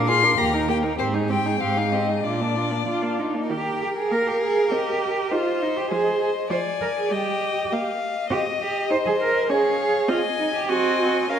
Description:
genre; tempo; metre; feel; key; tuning
quick classical-period movement for string quartet; 100 BPM; 2/4; rubato; Eb major, Ab major from 8.3 s; A4 = 441 Hz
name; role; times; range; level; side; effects
rich violin; second line; 0.0-11.4 s; D4 to F5; -26 LUFS; left 2 dB; none
warm viola; accompaniment; 0.0-11.4 s; Eb3 to F4; -28 LUFS; right 1 dB; none
warm cello; bass; 0.0-11.4 s; Eb2 to C5; -24 LUFS; right 4 dB; none
rich violin; melody; 0.1-11.4 s; C5 to C6; -27 LUFS; left 7 dB; none
room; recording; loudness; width
wet scoring stage reverb, RT60 1.5 s; none; -20 LUFS; side -8 dB against mid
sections
0.0-3.5 A section; 3.5-11.4 B section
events
none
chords
0.4 Eb; 1.0 Abmaj7; 2.2 Bb; 3.5 Eb; 4.1 Bb5; 4.7 Cm; 5.9 Fm7; 6.5 Bb7/F (rootless); 7.1 Eb/G; 8.3 Cm; 9.5 Db; 10.1 Ab/C; 10.7 Ab7/C

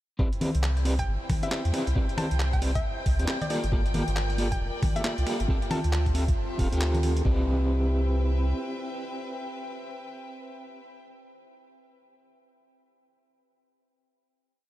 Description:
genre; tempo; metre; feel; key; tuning
UK garage, two-step garage; 136 BPM; 4/4; swing 61% on 16ths; C major; A4 = 444 Hz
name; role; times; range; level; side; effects
soft string machine; sustained chords; 0.2-7.3 s; G5; -41 LUFS; equal; phaser, ensemble chorus, sidechain pumping
electric guitar at the edge of break-up; stabs; 0.2-10.8 s; Bb3 to G5; -32 LUFS; equal; tremolo, ping-pong delay
boom bap sampler-style drum kit; drums; 0.2-7.4 s; kick drum, toms; -28 LUFS; equal; none
warm chamber string section; texture; 0.2-11.0 s; C4 to G5; -38 LUFS; equal; sidechain pumping
boom bap sampler-style drum kit; drums; 0.3-7.2 s; congas, finger snaps, handclaps, hi-hat; -34 LUFS; left 1 dB; none
soft dub sub bass; bass; 0.5-8.5 s; D1 to E2; -26 LUFS; equal; none
hollow square pluck; melody; 1.0-5.9 s; D5 to A5; -37 LUFS; left 2 dB; chorus, ping-pong delay
room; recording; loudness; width
light reverb, digital ambience; none; -24 LUFS; side -15 dB against mid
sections
0.2-7.3 drop; 7.3-10.8 final chord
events
drop 0.2-7.3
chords
0.2 Cmaj7; 3.5 Gm7; 5.5 Dm11; 7.3 Cmaj7

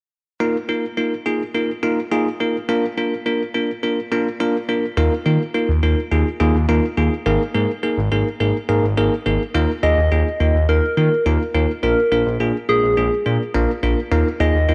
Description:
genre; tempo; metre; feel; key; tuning
synth-pop; 105 BPM; 4/4; straight; unclear; A4 = 439 Hz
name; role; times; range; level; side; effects
bell-like tine electric piano; accompaniment; 0.4-14.7 s; Bb3 to Bb4; -22 LUFS; equal; none
smooth synth bass; bass; 5.0-14.7 s; Ab1 to Eb3; -21 LUFS; equal; tube saturation
soft struck synth lead; melody; 9.8-14.7 s; Ab4 to Eb5; -22 LUFS; equal; chorus, analog delay
room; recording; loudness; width
light reverb, digital ambience; transformer saturation; -19 LUFS; mono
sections
0.4-9.5 A section; 9.5-14.7 B section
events
none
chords
0.4 Ebsus2; 2.7 Bb; 5.0 Ebsus2; 7.3 Absus2; 9.5 Ebsus2; 11.8 Bb; 14.1 Ebsus2

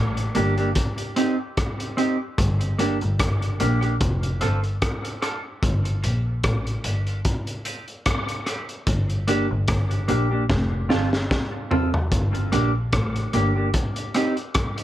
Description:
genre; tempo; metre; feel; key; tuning
dub reggae; 74 BPM; 4/4; swing 56% on 16ths; G minor; A4 = 439 Hz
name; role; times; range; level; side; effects
bright double bass; bass; 0.0-13.7 s; F1 to Bb1; -23 LUFS; equal; none
crunchy breakbeat drum kit; drums; 0.2-14.8 s; hi-hat, kick drum, rim click, snare drum, toms; -25 LUFS; equal; none
mellow electric guitar; accompaniment; 0.3-14.3 s; Bb3 to A4; -26 LUFS; right 2 dB; lush chorus, high-pass filter, dub echo
room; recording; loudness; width
light reverb; none; -21 LUFS; side -13 dB against mid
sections
0.0-14.8 A section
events
filter sweep on clean electric guitar 2.4-8.9; drum fill 10.5-12.1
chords
0.0 Gm; 0.8 Cm; 2.4 Gm; 4.0 F; 5.6 Gm; 7.2 Cm; 8.9 Gm; 10.5 F; 12.1 Gm; 13.7 Cm

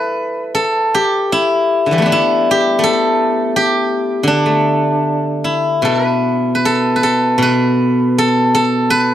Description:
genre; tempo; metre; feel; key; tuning
chinese traditional, Chinese solo plucked strings; 73-83 BPM; 2/4; rubato; E yu mode; A4 = 443 Hz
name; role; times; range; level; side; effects
steel-string zither; solo; 0.0-9.1 s; B2 to B4; -12 LUFS; equal; slapback echo
room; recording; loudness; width
small room ambience; dry, close 1970s-style studio recording; -12 LUFS; side -11 dB against mid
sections
0.0-9.1 A section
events
none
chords
none

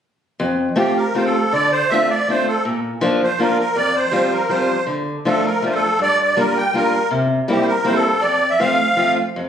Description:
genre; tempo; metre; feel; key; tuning
musette; 161 BPM; 3/4; rubato; F major; A4 = 440 Hz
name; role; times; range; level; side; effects
fingerpicked steel-string acoustic guitar; accompaniment; 0.4-9.5 s; F2 to G4; -19 LUFS; left 1 dB; none
musette accordion; melody; 0.8-9.1 s; G4 to G5; -18 LUFS; right 2 dB; plate reverb
room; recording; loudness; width
moderate studio reverb, RT60 0.5 s; recorded on a phone in the room, studio reverb, compression; -15 LUFS; side -8 dB against mid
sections
0.4-9.3 A section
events
none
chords
0.4 Fadd9; 1.5 Dm7; 2.6 Bb; 3.8 Fsus2; 4.9 Dm; 6.0 Gm7; 7.1 C7; 8.2 F

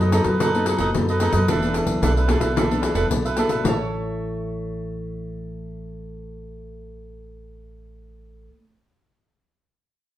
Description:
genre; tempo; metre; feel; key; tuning
samba and choro; 111 BPM; 4/4; straight; A major; A4 = 444 Hz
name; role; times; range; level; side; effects
cavaquinho; accompaniment; 0.0-8.6 s; D4 to A5; -25 LUFS; right 3 dB; none
nylon-string guitar; accompaniment; 0.0-8.6 s; B2 to C#5; -27 LUFS; left 2 dB; none
upright bass; bass; 0.0-8.5 s; E1 to F#2; -26 LUFS; equal; none
pandeiro; percussion; 0.0-3.8 s; none; -24 LUFS; left 2 dB; none
room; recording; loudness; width
wet studio reverb, RT60 0.7 s; heard from further back in the room; -19 LUFS; side -13 dB against mid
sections
0.0-3.6 A section; 3.6-8.0 B section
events
none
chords
0.0 B7/F#; 1.5 E7sus4; 3.6 A

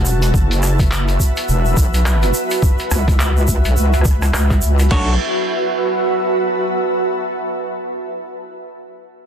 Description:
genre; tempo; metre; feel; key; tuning
glitch hop; 105 BPM; 4/4; swing 59% on 16ths; unclear; A4 = 440 Hz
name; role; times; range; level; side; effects
wobble bass; bass; 0.0-5.2 s; E1 to C#2; -15 LUFS; equal; chorus
granular cloud pad; texture; 0.0-7.2 s; F#4 to A5; -20 LUFS; right 1 dB; built-in reverb, sidechain pumping
tube shaker; percussion; 0.1-4.9 s; none; -27 LUFS; right 2 dB; none
boom bap sampler-style drum kit; drums; 0.2-4.9 s; handclaps, hi-hat, rim click; -25 LUFS; equal; overdrive, low-pass filter on snare, studio reverb, low-pass filter on hats
boom bap sampler-style drum kit; drums; 0.3-5.1 s; crash cymbal, kick drum, snare drum; -17 LUFS; equal; overdrive, studio reverb
semi-hollow electric guitar; stabs; 4.9-5.1 s; D4 to C#5; -25 LUFS; equal; vintage 12-bit sampler grit, sidechain pumping, ping-pong delay
room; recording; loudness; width
light reverb; dense, heavily limited modern master; -14 LUFS; side -8 dB against mid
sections
0.0-4.9 A section; 4.9-7.2 B section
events
none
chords
0.3 F#m7; 2.6 C#m7; 4.9 B7(no3)

